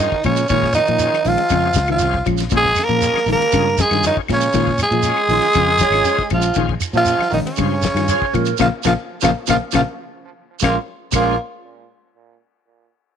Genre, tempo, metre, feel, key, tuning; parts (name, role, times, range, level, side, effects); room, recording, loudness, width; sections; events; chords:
afrobeat; 119 BPM; 4/4; straight; Bb dorian; A4 = 440 Hz
growling tenor saxophone; melody; 0.0-11.4 s; Bb3 to Bb4; -18 LUFS; equal
clear trombone; second line; 0.0-11.4 s; Bb2 to Bb3; -26 LUFS; right 13 dB
bright tonewheel organ; accompaniment; 0.0-11.4 s; Db4 to Eb5; -28 LUFS; left 15 dB; slow rotary speaker, overdrive, chorus vibrato
clean electric guitar; arpeggios; 0.0-11.2 s; Bb2 to F3; -23 LUFS; left 12 dB
mellow electric guitar; stabs; 0.0-11.3 s; Ab3 to F4; -28 LUFS; right 14 dB; analog chorus
fingered electric bass; bass; 0.0-11.4 s; Ab1 to Bb2; -22 LUFS; equal
damped 70s drum kit; drums; 0.0-11.2 s; crash cymbal, hi-hat, kick drum, ride cymbal, snare drum; -26 LUFS; left 4 dB
shekere; percussion; 0.2-11.2 s; -25 LUFS; right 5 dB
claves; percussion; 0.3-11.2 s; -28 LUFS; left 15 dB
breathy mellow bass recorder; second line; 5.3-11.4 s; F4 to Db5; -24 LUFS; right 13 dB
light reverb; 1960s-style stereo with parts hard left and right; -15 LUFS; side -8 dB against mid
0.0-10.6 A section; 10.6-12.6 B section
band accent 8.6-10.6
0.0 Bbm7